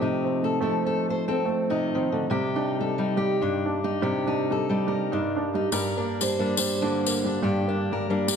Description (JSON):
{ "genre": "acoustic folk duo or small band", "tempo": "70 BPM", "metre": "4/4", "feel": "swing 57% on 8ths", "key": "C dorian", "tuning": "A4 = 440 Hz", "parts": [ { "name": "fingerpicked steel-string acoustic guitar", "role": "accompaniment", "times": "0.0-8.4 s", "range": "G2 to C5", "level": "-25 LUFS", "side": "left 2 dB", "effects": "none" }, { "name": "warm upright piano", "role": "arpeggios", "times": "0.0-8.4 s", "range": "G3 to Eb4", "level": "-28 LUFS", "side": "right 5 dB", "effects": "none" }, { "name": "tambourine", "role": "percussion", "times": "5.7-8.4 s", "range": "none", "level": "-29 LUFS", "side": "left 7 dB", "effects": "none" } ], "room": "moderate scoring stage reverb, RT60 1.5 s", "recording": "none", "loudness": "-23 LUFS", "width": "side -7 dB against mid", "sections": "0.0-8.4 A section", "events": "none", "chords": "0.0 F7; 2.3 Cmadd9; 5.7 Gm" }